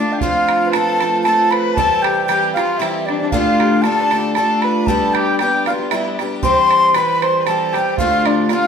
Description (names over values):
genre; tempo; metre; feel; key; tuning
celtic folk, Celtic waltz; 116 BPM; 3/4; swing 53% on 8ths; unclear; A4 = 440 Hz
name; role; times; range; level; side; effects
wooden flute; melody; 0.0-8.7 s; D5 to C6; -17 LUFS; left 1 dB; none
concert harp; second line; 0.0-8.7 s; D4 to C5; -23 LUFS; right 2 dB; none
warm fiddle; second line; 0.0-8.7 s; D4 to C5; -24 LUFS; left 1 dB; none
picked twelve-string acoustic guitar; accompaniment; 0.0-8.7 s; D2 to G4; -20 LUFS; left 2 dB; none
bodhran; percussion; 0.2-8.6 s; none; -24 LUFS; right 7 dB; none
room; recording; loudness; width
wet stone room reverb, RT60 1.1 s; band playing live in one room; -14 LUFS; side -7 dB against mid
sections
0.2-8.7 A section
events
none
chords
0.2 F; 1.8 C; 3.3 Dm; 4.9 G; 6.4 C; 8.0 Dm